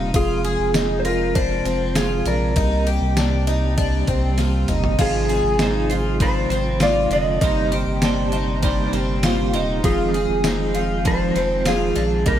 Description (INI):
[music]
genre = dream pop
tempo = 99 BPM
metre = 4/4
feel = straight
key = unclear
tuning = A4 = 440 Hz
[part]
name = mellow tonewheel organ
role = sustained chords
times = 0.0-12.4 s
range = C3 to G4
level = -26 LUFS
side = right 2 dB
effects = fast rotary speaker
[part]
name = picked twelve-string acoustic guitar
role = arpeggios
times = 0.0-12.4 s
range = D3 to Ab4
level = -24 LUFS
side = left 2 dB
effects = lush chorus, dub echo
[part]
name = saturated sub bass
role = bass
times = 0.0-12.4 s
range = Eb1 to C2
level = -24 LUFS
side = equal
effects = none
[part]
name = detuned 8-bit digital drum machine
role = drums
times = 0.1-12.4 s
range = crash cymbal, kick drum, ride cymbal, snare drum, tambourine, toms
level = -24 LUFS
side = equal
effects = none
[part]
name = electric slide guitar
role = melody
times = 0.2-12.4 s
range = Ab4 to Eb5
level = -24 LUFS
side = right 1 dB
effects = dub echo
[part]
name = semi-hollow electric guitar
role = accompaniment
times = 5.0-12.4 s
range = C3 to C5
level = -27 LUFS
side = right 4 dB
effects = tremolo, analog chorus, dub echo
[sound]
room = light reverb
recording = echo-heavy mix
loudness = -17 LUFS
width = side -10 dB against mid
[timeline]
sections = 0.0-12.4 A section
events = drum fill 4.4-5.0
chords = 0.1 Fm7; 2.6 Cm7; 5.0 Ab6; 7.4 Cm7/G; 9.8 Fm7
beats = | 0.14 0.75 1.35 1.96 | 2.57 3.17 3.78 4.38 | 4.99 5.60 6.20 6.81 | 7.42 8.02 8.63 9.23 | 9.84 10.45 11.05 11.66 | 12.26